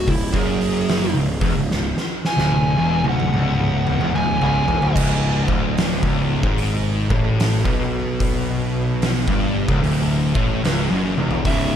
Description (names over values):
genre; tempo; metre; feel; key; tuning
stoner and doom metal; 74 BPM; 4/4; swing 65% on 8ths; C# phrygian; A4 = 440 Hz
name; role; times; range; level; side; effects
fuzz lead guitar; melody; 0.0-5.0, 11.5-11.8 s; E4 to G#5; -25 LUFS; right 1 dB; distortion, digital delay
fuzz picked electric bass; bass; 0.0-11.8 s; C#1 to B1; -25 LUFS; equal; overdrive
distorted electric guitar; riff; 0.1-11.8 s; C#2 to C#3; -27 LUFS; equal; overdrive
thick fuzz guitar; riff; 0.1-11.8 s; C#2 to C#3; -24 LUFS; left 7 dB; distortion
thick fuzz guitar; riff; 0.1-11.8 s; C#2 to C#3; -24 LUFS; right 6 dB; distortion
oversized low-tuned drum kit; drums; 0.1-11.7 s; crash cymbal, hi-hat, kick drum, snare drum, toms; -22 LUFS; equal; none
room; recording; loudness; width
small room ambience; none; -17 LUFS; side -9 dB against mid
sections
0.0-5.0 A section; 5.0-11.5 B section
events
lead electric guitar solo 0.0-5.0; drum fill 1.7-5.0, 11.1-11.5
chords
0.0 C#m